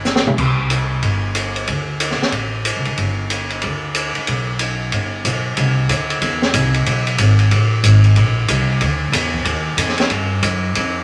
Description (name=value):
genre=jazz piano trio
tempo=185 BPM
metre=4/4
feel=swing 63% on 8ths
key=G major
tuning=A4 = 440 Hz
part: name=upright bass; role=bass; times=0.0-11.0 s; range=G1 to G2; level=-20 LUFS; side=equal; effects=none
part: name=open jazz drum kit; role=drums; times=0.0-10.8 s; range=crash cymbal, hi-hat, kick drum, ride cymbal, snare drum, toms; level=-21 LUFS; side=equal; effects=none
room=moderate studio reverb, RT60 0.5 s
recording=none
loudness=-17 LUFS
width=mono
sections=0.0-5.6 A section; 5.6-11.0 B section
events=drum fill 0.1-0.4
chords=none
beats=0.06 | 0.38 0.70 1.03 1.35 | 1.68 2.00 2.33 2.65 | 2.98 3.31 3.63 3.95 | 4.28 4.60 4.93 5.25 | 5.58 5.90 6.22 6.55 | 6.87 7.20 7.52 7.84 | 8.17 8.49 8.81 9.14 | 9.46 9.79 10.11 10.43 | 10.76